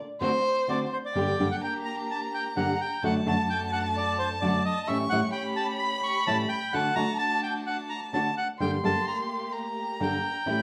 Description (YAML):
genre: tango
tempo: 129 BPM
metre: 4/4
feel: rubato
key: G harmonic minor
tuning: A4 = 441 Hz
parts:
  - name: warm violin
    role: second line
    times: 0.2-10.6 s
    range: C5 to C#6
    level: -34 LUFS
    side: equal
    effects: none
  - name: nylon-string guitar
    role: accompaniment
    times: 0.2-10.6 s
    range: F#2 to A4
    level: -31 LUFS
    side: equal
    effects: none
  - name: warm chamber string section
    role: stabs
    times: 0.2-10.6 s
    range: F#2 to G4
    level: -38 LUFS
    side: equal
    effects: none
  - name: bandoneon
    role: melody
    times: 0.7-10.6 s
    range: C5 to C#6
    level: -32 LUFS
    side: equal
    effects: none
room: wet large studio reverb, RT60 0.9 s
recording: band playing live in one room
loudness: -28 LUFS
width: mono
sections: 0.0-1.1 A section; 1.1-10.6 B section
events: violin solo 0.0-1.1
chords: 0.2 D7; 1.1 Gm; 3.0 D/F#; 4.9 A7; 6.7 D; 8.6 Gmadd9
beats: 0.21 0.68 | 1.15 1.62 2.09 2.55 | 3.02 3.48 3.94 4.41 | 4.87 5.34 5.80 6.26 | 6.73 7.20 7.66 8.13 | 8.60 9.07 9.54 10.00 | 10.47